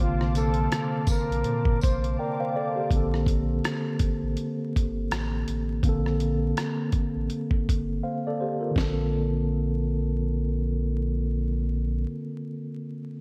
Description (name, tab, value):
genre	lo-fi hip hop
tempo	82 BPM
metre	4/4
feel	swing 58% on 16ths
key	Bb major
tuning	A4 = 440 Hz
part	breathy flugelhorn	melody	0.0-2.5 s	F4 to C5	-34 LUFS	equal	diffuse ambient delay
part	mellow tine electric piano	accompaniment	0.0-13.2 s	C3 to G5	-30 LUFS	equal	cassette tape
part	lush unison pad	sustained chords	0.0-2.9 s	C5 to D6	-42 LUFS	equal	chorus
part	sub bass with octave	bass	0.0-12.1 s	G1 to Bb2	-30 LUFS	equal	none
part	dusty soul sampler-style drum kit	drums	0.2-9.0 s	hi-hat, kick drum, rim click, snare drum	-28 LUFS	equal	none
part	tambourine	percussion	0.4-2.0 s	none	-46 LUFS	equal	none
room	light reverb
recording	vinyl crackle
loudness	-27 LUFS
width	mono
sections	0.0-2.9 A section; 2.9-8.8 B section; 8.8-11.7 C section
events	break 2.2-2.9; drums muted 8.0-8.8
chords	0.0 Bbmaj9